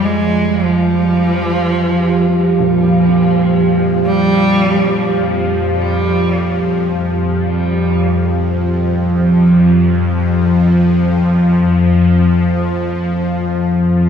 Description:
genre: dark ambient drone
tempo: free time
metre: none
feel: none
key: unclear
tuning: A4 = 441 Hz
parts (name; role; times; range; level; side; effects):
- warm cello; melody; 0.0-5.1 s; F3 to Ab3; -18 LUFS; equal; diffuse ambient delay
- deep dark ambient pad; sustained chords; 0.0-14.1 s; F3 to F5; -16 LUFS; right 2 dB; chorus, built-in reverb
- bowed-like drone; drone; 0.5-14.1 s; F2 to F3; -14 LUFS; left 1 dB; built-in reverb, phaser
- dark grand piano; arpeggios; 2.6-14.1 s; Bb2 to C4; -28 LUFS; right 1 dB; none
room: wet plate reverb, RT60 2.9 s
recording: dreamy mix soaked in reverb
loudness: -11 LUFS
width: side -7 dB against mid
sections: 0.0-14.1 A section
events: fade-in on synth drone 0.0-14.1; fade-out on ambient pad 0.0-14.1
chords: 0.0 Fsus2

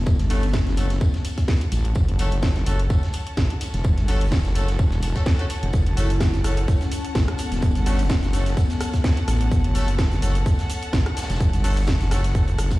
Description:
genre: bass house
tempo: 127 BPM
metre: 4/4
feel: swing 55% on 16ths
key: F# phrygian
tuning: A4 = 440 Hz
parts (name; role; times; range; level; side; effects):
- wobble bass; bass; 0.0-12.8 s; E1 to A1; -21 LUFS; equal; chorus, tube saturation, sidechain pumping
- rich studio string section; texture; 0.0-12.8 s; C#4 to A5; -34 LUFS; equal; sidechain pumping
- crunchy breakbeat drum kit; drums; 0.1-12.8 s; hi-hat, snare drum, tambourine; -40 LUFS; equal; sidechain pumping on hats, high-pass filter on hats, high-pass filter on snare, sidechain pumping on perc, high-pass filter on perc, high-pass filter on room
- electronic kick drum; drums; 0.1-12.8 s; none; -20 LUFS; equal; none
- garage drum kit; drums; 0.2-12.8 s; cabasa, hi-hat, rim click, snare drum; -31 LUFS; equal; none
- marimba with soft mallets; melody; 0.3-0.6, 6.0-9.5 s; B3 to E4; -32 LUFS; left 3 dB; digital delay
- bright horn section; stabs; 0.3-12.2 s; A3 to A4; -33 LUFS; left 2 dB; sidechain pumping, low-pass filter, digital delay
room: little or no reverb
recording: played on a big sound system in a bare room, large studio reverb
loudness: -19 LUFS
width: side -18 dB against mid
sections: 0.0-12.8 A section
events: fade-in on string section 0.0-12.8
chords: 0.0 F#m

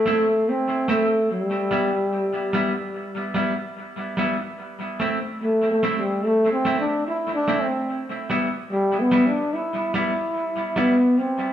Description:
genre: reggae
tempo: 73 BPM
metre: 4/4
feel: straight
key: unclear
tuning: A4 = 441 Hz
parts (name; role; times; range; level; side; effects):
- breathy trombone; melody; 0.0-11.5 s; G3 to E4; -21 LUFS; equal; none
- semi-hollow electric guitar; accompaniment; 0.1-11.0 s; G3 to E4; -25 LUFS; right 1 dB; analog delay
room: wet stone room reverb, RT60 1.3 s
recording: band playing live in one room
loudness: -20 LUFS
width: side -10 dB against mid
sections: 0.0-11.5 A section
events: trombone solo 0.0-11.5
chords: 0.0 Am; 1.3 Em; 4.6 Am; 7.9 Em

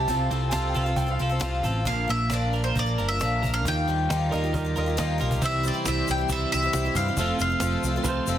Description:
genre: folk rock and heartland rock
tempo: 135 BPM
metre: 4/4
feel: straight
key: C mixolydian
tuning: A4 = 438 Hz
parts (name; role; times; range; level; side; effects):
- bowl-back mandolin; melody; 0.0-8.2 s; C5 to A5; -28 LUFS; left 1 dB; none
- picked twelve-string acoustic guitar; accompaniment; 0.0-8.4 s; Bb2 to Bb4; -31 LUFS; left 5 dB; none
- twelve-string electric guitar; riff; 0.0-8.4 s; F2 to Bb4; -30 LUFS; right 5 dB; spring reverb
- picked electric bass; bass; 0.0-8.4 s; F1 to G2; -27 LUFS; equal; none
- cajon; drums; 0.1-8.3 s; none; -33 LUFS; equal; none
- bright upright piano; second line; 0.5-5.3, 8.0-8.4 s; Bb4 to A5; -32 LUFS; right 4 dB; none
- barky reed electric piano; accompaniment; 5.4-8.3 s; E4 to G5; -37 LUFS; right 5 dB; none
- tonewheel organ; sustained chords; 5.4-8.4 s; C4 to C5; -37 LUFS; equal; slow rotary speaker, chorus vibrato
- tube shaker; percussion; 5.4-8.4 s; none; -38 LUFS; left 7 dB; none
room: light reverb, small room ambience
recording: dense, heavily limited modern master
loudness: -22 LUFS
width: side -11 dB against mid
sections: 0.0-5.4 A section; 5.4-8.4 B section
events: drum fill 5.2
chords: 0.1 F/C; 1.9 Bb; 3.6 Ebadd9; 5.4 C; 7.2 F

